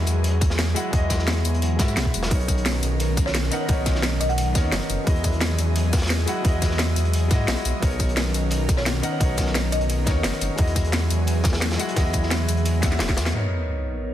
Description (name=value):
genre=liquid drum and bass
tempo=174 BPM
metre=4/4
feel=straight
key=B major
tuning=A4 = 440 Hz
part: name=clear concert grand piano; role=accompaniment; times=0.0-14.1 s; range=G#3 to F#5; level=-30 LUFS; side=left 2 dB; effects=ping-pong delay
part: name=airy breathy pad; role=sustained chords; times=0.0-14.1 s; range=D#3 to D#5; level=-30 LUFS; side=right 1 dB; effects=chorus, sidechain pumping
part: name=dark detuned saw bass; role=bass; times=0.0-13.3 s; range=E1 to G#2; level=-23 LUFS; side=equal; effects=none
part: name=crunchy breakbeat drum kit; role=drums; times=0.1-13.3 s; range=hi-hat, snare drum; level=-31 LUFS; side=equal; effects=high-pass filter on hats, studio reverb, high-pass filter on snare, high-pass filter on room
part: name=drum and bass drum kit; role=drums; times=0.1-13.4 s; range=crash cymbal, hi-hat, ride cymbal, snare drum, tambourine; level=-28 LUFS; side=left 1 dB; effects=overdrive, low-pass filter on hats, studio reverb, low-pass filter on perc, low-pass filter on snare, low-pass filter on cymbals
part: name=electronic kick drum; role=drums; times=0.4-13.2 s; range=none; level=-22 LUFS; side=equal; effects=overdrive, studio reverb
part: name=folk marimba with medium mallets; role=melody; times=3.3-5.1, 8.8-9.8 s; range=C#5 to F#5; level=-32 LUFS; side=left 1 dB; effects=ping-pong delay
part: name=sub drop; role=sound effects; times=13.3-14.1 s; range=none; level=-26 LUFS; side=equal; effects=none
room=light reverb, small room ambience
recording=dense, heavily limited modern master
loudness=-20 LUFS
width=side -12 dB against mid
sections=0.0-13.3 A section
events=drop 0.0-13.3; drum fill 12.8-13.3; band accent 13.3; impact 13.3-14.1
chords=0.0 Emaj9; 2.3 Bmaj9; 5.1 Emaj9; 7.8 Bmaj9; 10.6 Emaj9; 13.3 Bmaj9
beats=0.24 0.59 | 0.93 1.28 1.62 1.97 | 2.31 2.65 3.00 3.35 | 3.69 4.03 4.38 4.72 | 5.07 5.41 5.76 6.10 | 6.45 6.79 7.14 7.48 | 7.83 8.17 8.52 8.86 | 9.21 9.55 9.90 10.24 | 10.59 10.93 11.28 11.62 | 11.96 12.31 12.65 13.00 | 13.35 13.69 14.03